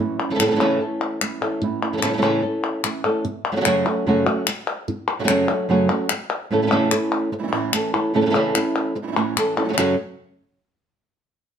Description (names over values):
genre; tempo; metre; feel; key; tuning
flamenco; 147 BPM; 4/4; straight; F# minor; A4 = 440 Hz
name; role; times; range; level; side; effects
flamenco guitar; melody; 0.0-9.9 s; F#2 to A4; -20 LUFS; equal; none
flamenco guitar; stabs; 0.0-9.9 s; F#2 to F#4; -25 LUFS; right 5 dB; none
palmas hand claps; percussion; 0.2-9.9 s; none; -24 LUFS; left 4 dB; none
room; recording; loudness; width
moderate studio reverb, RT60 0.7 s; none; -19 LUFS; side -8 dB against mid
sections
0.0-3.2 A section; 3.2-9.8 A section; 9.8-11.4 B section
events
none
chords
0.0 A; 3.2 F#m; 6.5 A; 9.8 F#m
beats
0.40 0.80 1.21 | 1.62 2.03 2.44 2.84 | 3.25 3.66 4.06 4.47 | 4.88 5.29 5.69 6.10 | 6.51 6.92 7.33 7.73 | 8.14 8.55 8.96 9.37 | 9.78